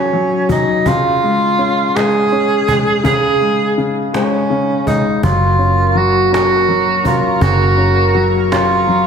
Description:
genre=six-eight pop ballad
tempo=55 BPM (dotted quarters)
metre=6/8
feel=straight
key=Db major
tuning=A4 = 440 Hz
part: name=mellow tenor saxophone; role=melody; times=0.0-9.1 s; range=Db4 to Ab4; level=-14 LUFS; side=right 2 dB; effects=slapback echo, digital delay
part: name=clear baby grand piano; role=accompaniment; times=0.0-9.1 s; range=Db3 to Db4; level=-17 LUFS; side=left 4 dB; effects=slapback echo
part: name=cajon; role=drums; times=0.1-9.0 s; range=none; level=-22 LUFS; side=equal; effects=none
part: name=chorused pulse-width pad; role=sustained chords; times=5.2-9.1 s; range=Bb4 to Db6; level=-22 LUFS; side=right 5 dB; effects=none
part: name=vintage muted fingered electric bass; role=bass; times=5.2-9.1 s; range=Gb1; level=-17 LUFS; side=right 1 dB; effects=none
room=wet lush hall reverb, RT60 2.1 s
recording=big arena sound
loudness=-12 LUFS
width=side -7 dB against mid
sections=0.0-9.1 A section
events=none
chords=0.0 Gb5; 0.9 Db5; 5.2 Gb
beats=| 0.86 1.96 | 3.05 4.14 | 5.24 6.33 | 7.42 8.51

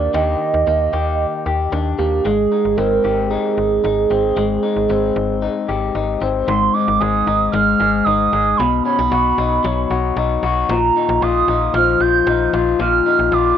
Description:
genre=jangly indie pop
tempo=114 BPM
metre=4/4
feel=straight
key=unclear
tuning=A4 = 440 Hz
part: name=hollow clarinet-like synth lead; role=melody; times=0.0-13.6 s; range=G4 to G6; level=-18 LUFS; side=right 7 dB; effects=chorus, cassette tape, analog delay
part: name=electric guitar through a small old amp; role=arpeggios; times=0.0-13.6 s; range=Ab2 to Ab4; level=-18 LUFS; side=left 8 dB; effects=analog delay
part: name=slap-like FM bass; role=bass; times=0.0-13.5 s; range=Ab1 to Eb2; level=-22 LUFS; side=equal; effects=none
room=light reverb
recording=home recording on cassette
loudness=-14 LUFS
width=side -9 dB against mid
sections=0.0-6.5 A section; 6.5-13.6 B section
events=none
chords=0.0 Ebmaj7; 2.3 Abmaj7; 6.5 Ab5; 8.6 B; 10.7 Bbsus4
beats=| 0.14 0.67 1.19 1.72 | 2.25 2.78 3.31 3.84 | 4.37 4.90 5.43 5.96 | 6.49 7.01 7.54 8.07 | 8.59 9.12 9.65 10.17 | 10.70 11.22 11.75 12.28 | 12.80 13.32

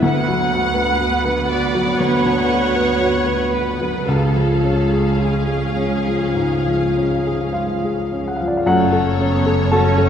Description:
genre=classical, romantic movement for piano and orchestra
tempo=48-63 BPM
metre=4/4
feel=rubato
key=F# minor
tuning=A4 = 438 Hz
part: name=rich studio violin section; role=melody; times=0.0-10.1 s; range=C#5 to F#5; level=-29 LUFS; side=left 3 dB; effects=none
part: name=warm grand piano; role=melody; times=0.0-10.1 s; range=C#2 to A5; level=-19 LUFS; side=left 1 dB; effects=none
part: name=rich symphonic violin section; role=second line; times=0.0-10.1 s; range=F#4 to F#5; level=-24 LUFS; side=equal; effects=none
part: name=rich symphonic viola section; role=accompaniment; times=0.0-10.1 s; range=A3 to B4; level=-24 LUFS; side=right 2 dB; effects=none
part: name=mellow French horn section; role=sustained chords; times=0.0-10.1 s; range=G#3 to F#4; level=-27 LUFS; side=equal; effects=none
part: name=dark studio cello section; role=bass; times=0.0-10.1 s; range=C#2 to F#2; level=-25 LUFS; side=right 1 dB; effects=none
part: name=rich studio double bass section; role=bass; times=0.0-10.1 s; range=F#1 to D2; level=-26 LUFS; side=right 4 dB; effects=none
room=wet scoring stage reverb, RT60 1.8 s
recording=heard from further back in the room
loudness=-16 LUFS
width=side -8 dB against mid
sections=0.0-8.7 A section; 8.7-10.1 B section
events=none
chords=0.0 Bm/D; 4.1 C#; 8.7 F#m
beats=| 0.03 1.00 1.98 2.99 | 4.07 5.17 6.32 7.54 | 8.65 9.71

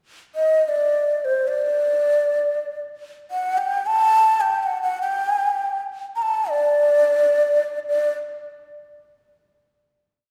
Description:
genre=Arabic maqam ensemble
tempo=free time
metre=none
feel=none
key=D maqam hijaz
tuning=A4 = 440 Hz
part: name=breathy mellow ney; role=solo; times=0.4-8.1 s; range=C5 to Bb5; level=-21 LUFS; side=equal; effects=slapback echo
room=wet concert hall reverb, RT60 2.1 s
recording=heard from further back in the room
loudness=-20 LUFS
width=mono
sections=0.1-7.9 free-time section; 7.9-9.8 final note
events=none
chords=none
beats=free time

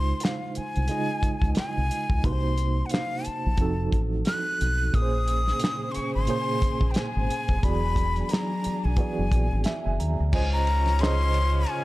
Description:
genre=R&B, neo-soul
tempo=89 BPM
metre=4/4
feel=swing 57% on 16ths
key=Db major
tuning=A4 = 440 Hz
part: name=breathy jazz flute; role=melody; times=0.0-11.8 s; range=F5 to Gb6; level=-30 LUFS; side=left 2 dB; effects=none
part: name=tine electric piano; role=accompaniment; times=0.0-11.8 s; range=Bb2 to Bb5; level=-31 LUFS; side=right 4 dB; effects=medium tremolo
part: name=deep dub fingered electric bass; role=bass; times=0.0-11.6 s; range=E1 to Eb2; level=-25 LUFS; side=equal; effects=none
part: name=cloth-damped thuddy drum kit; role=drums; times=0.2-11.8 s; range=crash cymbal, handclaps, hi-hat, kick drum, ride cymbal, snare drum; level=-27 LUFS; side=equal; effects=none
part: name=warm studio string section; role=sustained chords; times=4.9-10.3 s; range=Db3 to C5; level=-34 LUFS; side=left 1 dB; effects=none
part: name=clear horn section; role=stabs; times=10.3-11.8 s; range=Ab2 to Db4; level=-36 LUFS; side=left 3 dB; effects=none
room=studio ambience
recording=dark, warm production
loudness=-23 LUFS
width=side -18 dB against mid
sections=0.0-10.3 A section; 10.3-11.8 B section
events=tine electric piano fill 9.3-10.3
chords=0.0 Dbmaj7; 2.2 Cm7b5; 3.6 F7b9; 4.9 Bbm9; 7.6 E9; 10.3 Dbmaj7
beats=0.22 0.89 1.56 | 2.24 2.91 3.59 4.26 | 4.94 5.61 6.28 6.96 | 7.63 8.31 8.98 9.65 | 10.33 11.00 11.68

